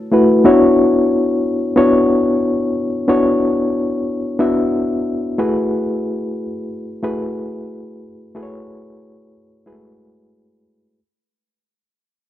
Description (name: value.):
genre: soul.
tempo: 91 BPM.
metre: 4/4.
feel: swing 54% on 16ths.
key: unclear.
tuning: A4 = 440 Hz.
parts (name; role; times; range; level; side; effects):
bright reed electric piano; accompaniment; 0.0-11.0 s; G#3 to E5; -14 LUFS; left 1 dB; fast tremolo.
room: light reverb, small room reverb.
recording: none.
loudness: -14 LUFS.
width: side -12 dB against mid.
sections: 0.5-11.0 A section.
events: fade-out 0.5-11.0.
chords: 0.5 Dmaj13; 5.4 F#m11.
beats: | 0.45 1.11 1.77 2.43 | 3.09 3.75 4.40 5.06 | 5.72 6.38 7.04 7.69 | 8.35 9.01 9.67 10.33.